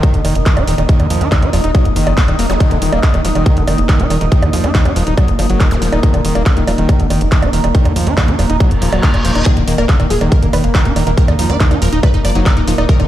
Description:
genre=psychedelic trance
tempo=140 BPM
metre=4/4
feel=straight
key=unclear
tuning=A4 = 440 Hz
part: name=overtone-sweeping drone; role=sustained chords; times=0.0-13.1 s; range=Bb3 to Bb4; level=-24 LUFS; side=right 1 dB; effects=chorus, built-in reverb, phaser, vintage 12-bit sampler grit, sidechain pumping
part: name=screaming distorted acid line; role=riff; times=0.0-13.1 s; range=D3 to Eb4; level=-19 LUFS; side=moving between left 5 dB and right 4 dB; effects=distortion, chorus, auto-pan, sidechain pumping, dub echo
part: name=electronic kick drum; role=drums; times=0.0-13.0 s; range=none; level=-11 LUFS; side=equal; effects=none
part: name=techno drum kit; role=drums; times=0.0-13.1 s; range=bongos, handclaps, hi-hat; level=-22 LUFS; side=right 2 dB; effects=overdrive
part: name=warbly tape-like pad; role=texture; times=0.0-13.1 s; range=Bb3 to Eb6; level=-22 LUFS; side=equal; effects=chorus, built-in reverb, sidechain pumping
part: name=tight sequencer bass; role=bass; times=0.1-13.1 s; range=Eb1 to Eb2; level=-15 LUFS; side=equal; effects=none
part: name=zap and reverse cymbal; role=sound effects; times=2.5-2.6, 5.7-5.8, 8.7-9.5 s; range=none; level=-25 LUFS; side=right 1 dB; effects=none
part: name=supersaw stab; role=melody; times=9.5-13.0 s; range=Bb3 to D5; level=-21 LUFS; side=equal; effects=phaser, sidechain pumping, dub echo
room=light reverb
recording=played on a big sound system in a bare room, large studio reverb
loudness=-11 LUFS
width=side -13 dB against mid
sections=0.0-13.1 A section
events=reverse cymbal 8.7-9.5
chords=0.0 Eb5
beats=0.03 0.46 | 0.89 1.32 1.75 2.17 | 2.60 3.03 3.46 3.89 | 4.32 4.75 5.17 5.60 | 6.03 6.46 6.89 7.32 | 7.75 8.18 8.60 9.03 | 9.46 9.89 10.32 10.75 | 11.18 11.60 12.03 12.46 | 12.89

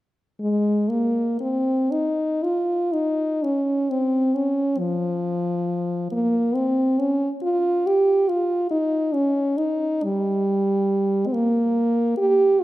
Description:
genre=classical, free, expressive piece for unaccompanied French horn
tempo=38-48 BPM (dotted quarters)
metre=6/8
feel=rubato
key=unclear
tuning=A4 = 440 Hz
part: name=mellow French horn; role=solo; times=0.4-12.6 s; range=F3 to G4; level=-19 LUFS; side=equal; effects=none
room=wet recital hall reverb, RT60 1.6 s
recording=minimal, uncompressed stereo recording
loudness=-20 LUFS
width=side -16 dB against mid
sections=0.4-12.6 A section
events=none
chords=none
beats=| 0.39 1.92 | 3.44 4.79 | 6.11 7.43 | 8.70 10.04 | 11.33 12.61

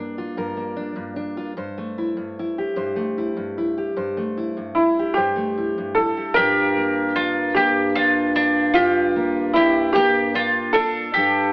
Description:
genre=acoustic folk duo or small band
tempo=50 BPM (dotted quarters)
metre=6/8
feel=straight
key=G dorian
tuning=A4 = 445 Hz
part: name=fingerpicked steel-string acoustic guitar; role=accompaniment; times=0.0-11.5 s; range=G2 to C5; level=-26 LUFS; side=equal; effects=none
part: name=clear upright piano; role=melody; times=4.7-11.5 s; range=E4 to Bb4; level=-20 LUFS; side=equal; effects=none
part: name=mandolin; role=arpeggios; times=6.4-11.5 s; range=D4 to G4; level=-20 LUFS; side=equal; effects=none
part: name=mellow bass clarinet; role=bass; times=6.4-11.5 s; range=G2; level=-24 LUFS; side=equal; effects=none
room=wet studio reverb, RT60 0.5 s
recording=heard from further back in the room, AM radio sound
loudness=-18 LUFS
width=side -28 dB against mid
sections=0.0-6.4 A section; 6.4-11.5 B section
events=none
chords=0.0 Gm7; 1.6 Am7/G; 6.4 Gm7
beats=0.37 | 1.57 2.77 | 3.97 5.17 | 6.36 7.56 | 8.75 9.95 | 11.14

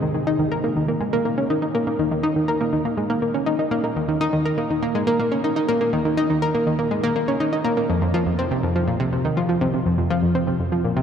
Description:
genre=ambient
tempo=122 BPM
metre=4/4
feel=straight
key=unclear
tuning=A4 = 441 Hz
part: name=analog pluck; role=solo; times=0.0-11.0 s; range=F2 to Bb4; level=-19 LUFS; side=equal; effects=chorus, analog delay
room=wet cathedral reverb, RT60 6.3 s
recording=in a vast, echoing space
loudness=-19 LUFS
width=side -8 dB against mid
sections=0.0-11.0 A section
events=none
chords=none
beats=| 0.03 0.52 1.01 1.50 | 1.99 2.48 2.98 3.47 | 3.96 4.45 4.94 5.44 | 5.93 6.42 6.91 7.40 | 7.89 8.39 8.88 9.37 | 9.86 10.35 10.85

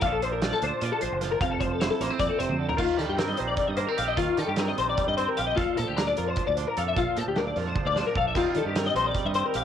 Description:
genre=math rock and midwest emo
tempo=302 BPM (eighths)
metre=7/8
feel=straight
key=unclear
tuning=A4 = 440 Hz
part: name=twangy electric guitar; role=accompaniment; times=0.0-9.6 s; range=F2 to A4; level=-31 LUFS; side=right 10 dB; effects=cassette tape
part: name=twelve-string electric guitar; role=arpeggios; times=0.0-9.6 s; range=F4 to F5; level=-26 LUFS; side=left 6 dB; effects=ensemble chorus, cassette tape
part: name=growling fingered electric bass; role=bass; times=0.0-9.6 s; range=F1 to Eb3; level=-33 LUFS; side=right 2 dB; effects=overdrive
part: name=loose indie drum kit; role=drums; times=0.0-9.6 s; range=crash cymbal, hi-hat, kick drum, snare drum, splash cymbal, toms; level=-31 LUFS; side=right 2 dB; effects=cassette tape
room=light reverb, small room reverb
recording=home recording on cassette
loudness=-24 LUFS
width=side -9 dB against mid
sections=0.0-2.8 A section; 2.8-9.6 B section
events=drum fill 2.5, 7.8-8.4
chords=0.0 Bbmaj7; 1.4 Fmaj7; 2.8 Eb69; 5.6 Bbmaj9; 8.4 Eb69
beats=| 0.03 0.22 0.42 0.62 0.82 1.01 1.21 | 1.41 1.61 1.81 2.00 2.20 2.40 2.60 | 2.80 3.00 3.19 3.39 3.59 3.79 3.99 | 4.19 4.39 4.58 4.78 4.98 5.18 5.38 | 5.58 5.78 5.98 6.18 6.38 6.57 6.77 | 6.97 7.17 7.37 7.57 7.77 7.96 8.16 | 8.36 8.56 8.76 8.96 9.16 9.36 9.55

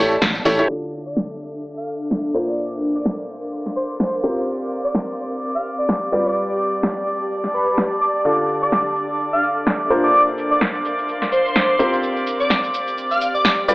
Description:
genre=piano house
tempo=127 BPM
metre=4/4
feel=swing 57% on 16ths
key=D minor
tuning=A4 = 441 Hz
part: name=clear upright piano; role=riff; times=0.0-13.7 s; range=Bb2 to D5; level=-23 LUFS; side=equal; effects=sidechain pumping
part: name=solid FM bass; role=bass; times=0.0-0.6 s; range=A1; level=-28 LUFS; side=equal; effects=sidechain pumping
part: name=ethereal airy pad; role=texture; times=0.0-13.7 s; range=C4 to C6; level=-27 LUFS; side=equal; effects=ensemble chorus, built-in reverb, sidechain pumping
part: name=punchy analog drum machine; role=drums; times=0.1-13.7 s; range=hi-hat, shaker, snare drum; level=-21 LUFS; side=equal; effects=none
part: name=tambourine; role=percussion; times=0.1-0.7 s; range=none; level=-33 LUFS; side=equal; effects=none
part: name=vintage drum kit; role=drums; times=0.2-0.6 s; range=hi-hat, snare drum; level=-31 LUFS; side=equal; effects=none
part: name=clear chamber violin section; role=sustained chords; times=0.7-13.7 s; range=D5 to D6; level=-25 LUFS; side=equal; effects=sidechain pumping, low-pass filter
part: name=airy dreamy lead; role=melody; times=1.1-13.4 s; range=B4 to F5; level=-21 LUFS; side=equal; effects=chorus, tape echo
room=moderate plate reverb, RT60 1.0 s, small room ambience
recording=low-pass filter, AM radio sound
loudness=-17 LUFS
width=side -22 dB against mid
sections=0.7-13.7 A section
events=band accent 0.2; filter sweep on violin section 0.7-13.7; filter sweep 0.7-13.7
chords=0.0 A7; 0.7 Dm; 2.3 Bbadd9; 4.2 C7sus4; 6.1 G7; 8.2 Dm; 9.9 Bbadd9; 11.8 C7sus4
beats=0.22 | 0.69 1.16 1.64 2.11 | 2.58 3.05 3.52 4.00 | 4.47 4.94 5.42 5.89 | 6.36 6.83 7.30 7.78 | 8.25 8.72 9.20 9.67 | 10.14 10.61 11.08 11.56 | 12.03 12.50 12.97 13.45

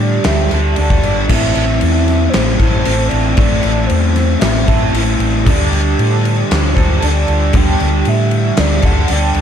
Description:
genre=rock, shoegaze and dream pop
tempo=116 BPM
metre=4/4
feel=straight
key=unclear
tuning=A4 = 440 Hz
part: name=hollow clarinet-like synth lead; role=melody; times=0.0-9.4 s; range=C5 to G5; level=-22 LUFS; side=right 1 dB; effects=chorus, tape echo
part: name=crunchy overdriven guitar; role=riff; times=0.0-9.4 s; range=A2 to A4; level=-16 LUFS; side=right 1 dB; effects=lush chorus
part: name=hollow-body short-scale fingered electric bass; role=bass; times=0.0-9.4 s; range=G#1 to A2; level=-15 LUFS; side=equal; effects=none
part: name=gated 80s drum kit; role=drums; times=0.2-9.4 s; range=crash cymbal, kick drum, snare drum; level=-17 LUFS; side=left 1 dB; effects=none
room=studio reverb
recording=dark, warm production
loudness=-11 LUFS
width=side -8 dB against mid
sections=0.0-1.3 A section; 1.3-9.4 B section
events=none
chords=0.0 Dsus4; 1.3 Am; 5.5 Dsus4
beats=0.26 0.78 | 1.30 1.82 2.34 2.86 | 3.38 3.90 4.42 4.94 | 5.46 5.98 6.50 7.02 | 7.53 8.05 8.57 9.09

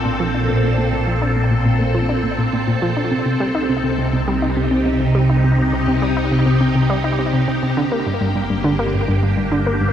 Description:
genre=ambient, sequencer-driven space music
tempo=103 BPM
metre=4/4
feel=straight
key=unclear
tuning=A4 = 440 Hz
part: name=phased string machine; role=sustained chords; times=0.0-9.9 s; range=Bb2 to A4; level=-18 LUFS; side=equal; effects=ensemble chorus, phaser
part: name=analog drone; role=bass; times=0.0-9.9 s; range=G1 to C2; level=-25 LUFS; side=equal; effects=chorus
part: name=analog pluck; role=riff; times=0.1-9.9 s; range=G2 to Eb4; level=-20 LUFS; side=equal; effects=chorus, tape echo
room=wet huge ambient reverb, RT60 8.2 s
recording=cassette tape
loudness=-15 LUFS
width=side -10 dB against mid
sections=0.0-9.9 A section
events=filter sweep on synth arpeggio sound 0.0-9.9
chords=0.0 Bbmaj7; 3.1 Cm; 7.8 Gm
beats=0.20 | 0.78 1.36 1.95 2.53 | 3.11 3.69 4.28 4.86 | 5.44 6.03 6.61 7.19 | 7.77 8.36 8.94 9.52

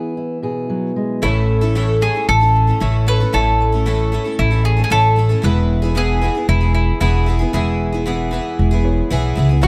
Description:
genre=indie folk with a building arrangement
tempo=114 BPM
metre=4/4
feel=straight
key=A major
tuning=A4 = 440 Hz
part: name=fingerpicked steel-string acoustic guitar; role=accompaniment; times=0.0-1.2 s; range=B2 to G#4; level=-23 LUFS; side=equal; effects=none
part: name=mandolin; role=melody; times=1.2-9.7 s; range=E4 to B4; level=-22 LUFS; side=equal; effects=none
part: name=picked twelve-string acoustic guitar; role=accompaniment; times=1.2-9.7 s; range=A2 to A4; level=-24 LUFS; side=equal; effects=none
part: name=warm upright piano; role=accompaniment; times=1.2-9.7 s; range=A1 to E5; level=-31 LUFS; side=equal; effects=none
part: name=upright bass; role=bass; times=1.2-9.7 s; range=E1 to D2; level=-18 LUFS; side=equal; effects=none
part: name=bluegrass banjo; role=arpeggios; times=9.6-9.7 s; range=F#4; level=-20 LUFS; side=equal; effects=none
room=little or no reverb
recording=dark, warm production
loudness=-17 LUFS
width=mono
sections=0.0-1.2 A section; 1.2-9.7 B section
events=none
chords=0.0 E; 1.2 A; 5.4 E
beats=0.17 0.70 | 1.23 1.75 2.28 2.81 | 3.33 3.86 4.38 4.91 | 5.43 5.96 6.48 7.01 | 7.53 8.06 8.58 9.11 | 9.63

